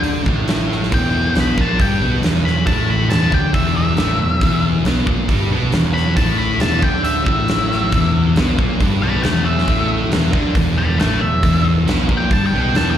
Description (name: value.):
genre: blues rock power trio and southern rock.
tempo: 137 BPM.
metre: 4/4.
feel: straight.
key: E minor.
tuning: A4 = 440 Hz.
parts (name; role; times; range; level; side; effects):
thick fuzz guitar; riff; 0.0-13.0 s; E2 to D4; -18 LUFS; equal; distortion, slapback echo.
vintage muted picked electric bass; bass; 0.0-13.0 s; E1 to D2; -21 LUFS; equal; none.
huge arena drum kit; drums; 0.0-12.9 s; hi-hat, kick drum, snare drum; -19 LUFS; equal; none.
octave-fuzz lead guitar; melody; 0.9-13.0 s; E5 to B5; -21 LUFS; left 2 dB; distortion, slapback echo.
room: little or no reverb.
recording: live gig heard through the venue's PA, recital hall reverb.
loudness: -14 LUFS.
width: side -10 dB against mid.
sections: 0.0-13.0 A section.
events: none.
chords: 0.0 Em.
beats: 0.04 0.48 | 0.92 1.36 1.79 2.23 | 2.67 3.11 3.54 3.98 | 4.42 4.86 5.30 5.74 | 6.17 6.61 7.05 7.49 | 7.92 8.36 8.80 9.24 | 9.68 10.12 10.56 11.00 | 11.44 11.88 12.31 12.75.